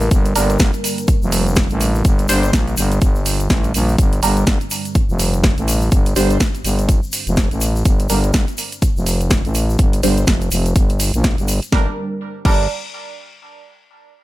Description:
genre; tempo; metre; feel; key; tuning
bass house; 124 BPM; 4/4; swing 59% on 16ths; G minor; A4 = 440 Hz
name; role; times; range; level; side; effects
dark analog pad; sustained chords; 0.0-12.0 s; G3 to C5; -27 LUFS; right 2 dB; chorus, sidechain pumping
growling FM bass; bass; 0.0-12.7 s; F1 to Bb1; -18 LUFS; equal; sidechain pumping
egg shaker; percussion; 0.0-11.7 s; none; -28 LUFS; left 4 dB; none
electronic kick drum; drums; 0.1-12.6 s; none; -16 LUFS; equal; none
house drum kit; drums; 0.1-12.6 s; crash cymbal, hi-hat, snare drum; -22 LUFS; right 1 dB; none
band-passed chord stab; stabs; 0.4-12.6 s; G3 to C5; -23 LUFS; right 2 dB; phaser, lush chorus, cassette tape, sidechain pumping, tape echo
room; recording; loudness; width
digital ambience; none; -14 LUFS; side -17 dB against mid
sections
0.0-11.7 A section; 11.7-13.7 B section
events
filter sweep on FM bass 0.0-11.7; filter sweep on synth stab 0.0-11.7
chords
0.0 Gm

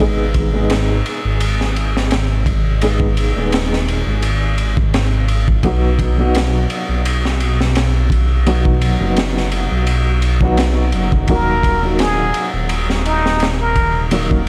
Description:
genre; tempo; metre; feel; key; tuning
trip hop; 85 BPM; 4/4; swing 54% on 16ths; G# minor; A4 = 440 Hz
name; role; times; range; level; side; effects
dark upright piano; accompaniment; 0.0-14.5 s; F#3 to G#4; -24 LUFS; equal; tremolo, vintage 12-bit sampler grit, tape echo
dark detuned saw bass; bass; 0.0-14.5 s; D#1 to B1; -19 LUFS; equal; none
crunchy breakbeat drum kit; drums; 0.3-14.5 s; kick drum, ride cymbal, snare drum; -21 LUFS; equal; none
trumpet with plunger mute; melody; 11.3-14.1 s; D#4 to A#4; -21 LUFS; equal; tape echo
room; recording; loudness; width
small room ambience; vinyl crackle; -16 LUFS; mono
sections
0.0-14.5 A section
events
none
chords
0.0 G#m; 5.6 B; 11.3 D#m

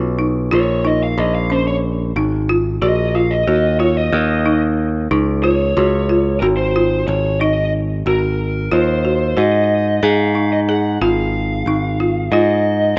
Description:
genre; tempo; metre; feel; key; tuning
progressive instrumental, band music in an uneven meter; 183 BPM (eighths); 9/8; straight; Ab mixolydian; A4 = 439 Hz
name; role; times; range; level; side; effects
folk marimba with medium hard mallets; arpeggios; 0.0-12.9 s; Db4 to Ab4; -22 LUFS; equal; none
modern bright picked electric bass; bass; 0.0-13.0 s; Ab1 to Ab2; -20 LUFS; equal; none
lead guitar through a small cranked amp; melody; 0.5-13.0 s; Bb4 to Gb5; -22 LUFS; equal; overdrive, digital delay
room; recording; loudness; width
light reverb, studio reverb; rough home demo mix, nothing above 7.8 kHz; -17 LUFS; mono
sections
0.0-8.1 A section; 8.1-13.0 B section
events
lead electric guitar solo 0.0-8.1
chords
0.0 N.C.; 0.5 Bbm; 2.2 Ab5; 3.5 Ebm; 5.1 Db; 6.4 Ab5; 11.0 Db/Ab (rootless)

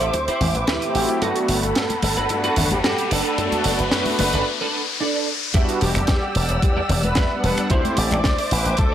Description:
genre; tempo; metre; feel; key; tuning
nu-disco, nu disco; 111 BPM; 4/4; straight; E minor; A4 = 442 Hz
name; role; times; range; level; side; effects
wide unison lead; melody; 0.0-8.9 s; E4 to D5; -26 LUFS; equal; analog delay
dark studio violin section; sustained chords; 0.0-8.9 s; A4 to E6; -28 LUFS; left 1 dB; sidechain pumping
twelve-string electric guitar; riff; 0.0-8.4 s; D4 to D5; -27 LUFS; right 4 dB; ensemble chorus, low-pass filter
slap bass with an envelope filter; bass; 0.0-8.9 s; E1 to G2; -24 LUFS; equal; none
tight funk drum kit; drums; 0.0-8.9 s; finger snaps, hi-hat, snare drum; -25 LUFS; right 2 dB; none
riser; sound effects; 0.3-5.5 s; none; -28 LUFS; left 4 dB; none
electronic kick drum; drums; 0.1-8.9 s; none; -21 LUFS; equal; overdrive, high-pass filter on kick, high-pass filter on room
congas; percussion; 0.4-8.6 s; none; -27 LUFS; left 2 dB; none
warm analog pad; accompaniment; 0.8-8.1 s; G3 to F#5; -26 LUFS; equal; chorus, tremolo
room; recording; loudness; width
moderate echo chamber reverb, RT60 2.0 s; dry, gritty hardware recording; -18 LUFS; side -10 dB against mid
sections
0.0-5.5 A section; 5.5-8.9 B section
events
build-up 0.0-5.5; filter sweep on analog synth lead 0.0-5.5; riser 0.3-5.5; break 4.5-5.5; drop 5.5-8.9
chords
0.0 D9sus4; 1.2 Gmaj9; 3.1 Bm7/F#; 5.5 Em9; 7.7 D9sus4

